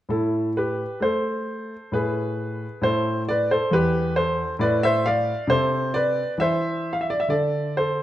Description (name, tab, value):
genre	classical, baroque-style suite movement for grand piano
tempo	66 BPM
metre	3/4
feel	rubato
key	A minor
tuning	A4 = 441 Hz
part	clear grand piano	solo	0.1-8.0 s	E2 to F5	-21 LUFS	equal	none
room	moderate recital hall reverb, RT60 1.5 s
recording	dark, warm production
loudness	-21 LUFS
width	side -13 dB against mid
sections	0.1-8.0 A section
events	none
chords	0.1 Am; 1.9 Asus2; 2.8 A5; 4.6 Bdim/A; 5.5 Am/C; 7.3 D5